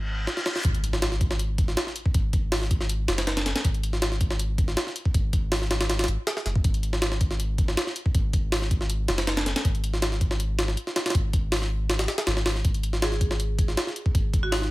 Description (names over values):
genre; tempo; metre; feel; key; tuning
drum and bass, jungle; 160 BPM; 4/4; straight; unclear; A4 = 439 Hz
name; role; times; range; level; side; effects
soft dub sub bass; bass; 0.0-14.7 s; F#1 to G#1; -27 LUFS; equal; none
reverse cymbal and impact; sound effects; 0.0-2.1 s; none; -34 LUFS; left 1 dB; none
jungle sampler-style drum kit; drums; 0.3-14.7 s; hi-hat, kick drum, snare drum; -24 LUFS; equal; studio reverb
marimba with hard mallets; melody; 13.0-14.7 s; D#4 to G#4; -33 LUFS; right 2 dB; dub echo
room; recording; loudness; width
digital ambience; none; -23 LUFS; side -19 dB against mid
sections
0.6-14.7 A section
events
reverse cymbal 0.0-0.6; drum fill 0.3-0.6; drop 0.6-14.7; impact 0.6-2.1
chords
0.0 N.C.; 0.6 G#5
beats
0.27 | 0.65 1.02 1.40 1.77 | 2.15 2.52 2.90 3.27 | 3.65 4.02 4.40 4.77 | 5.15 5.52 5.90 6.27 | 6.65 7.02 7.40 7.77 | 8.15 8.52 8.90 9.27 | 9.65 10.02 10.40 10.77 | 11.15 11.52 11.90 12.27 | 12.65 13.02 13.40 13.77 | 14.15 14.52